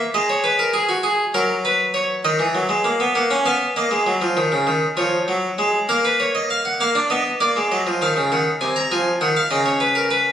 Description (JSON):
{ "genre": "classical, baroque-style two-part invention for harpsichord", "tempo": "66 BPM (dotted quarters)", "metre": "6/8", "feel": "straight", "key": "B major", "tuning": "A4 = 440 Hz", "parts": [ { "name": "harpsichord", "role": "solo", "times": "0.0-10.3 s", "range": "B#2 to A#5", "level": "-17 LUFS", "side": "equal", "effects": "none" } ], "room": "wet stone room reverb, RT60 1.4 s", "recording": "recorded on a phone in the room, club reverb, compression", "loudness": "-17 LUFS", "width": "side -9 dB against mid", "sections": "0.0-6.8 A section; 6.8-10.3 B section", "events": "none", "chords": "0.4 G#m9; 1.3 F#; 2.2 B/D#; 3.2 F#/A#; 4.1 C#add9; 5.0 C#/E#; 5.9 F#/A#; 6.8 A#7; 7.7 D#m; 8.6 G#7/B#; 9.5 Bmaj9/C#", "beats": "0.44 | 1.34 2.25 | 3.15 4.07 | 4.97 5.89 | 6.80 7.71 | 8.61 9.51" }